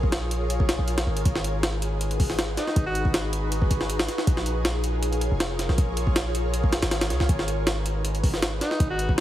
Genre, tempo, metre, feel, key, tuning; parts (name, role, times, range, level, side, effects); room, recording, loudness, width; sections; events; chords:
drum and bass, jungle; 159 BPM; 4/4; straight; G# dorian; A4 = 440 Hz
ethereal airy pad; sustained chords; 0.0-9.2 s; D#4 to C#5; -30 LUFS; equal; ensemble chorus, built-in reverb
warm 808-style bass; bass; 0.0-9.2 s; E#1 to B#1; -27 LUFS; equal
jungle sampler-style drum kit; drums; 0.0-9.2 s; hi-hat, kick drum, snare drum; -25 LUFS; equal; overdrive, small room ambience
clear alto saxophone; melody; 2.6-3.1, 8.6-9.1 s; D#4 to F#4; -30 LUFS; equal; dub echo
light reverb; heavily compressed radio sound, multiband compression; -22 LUFS; side -13 dB against mid
0.0-9.2 A section
0.0 A#m7; 1.3 G#m7; 4.3 A#m7; 7.3 G#m7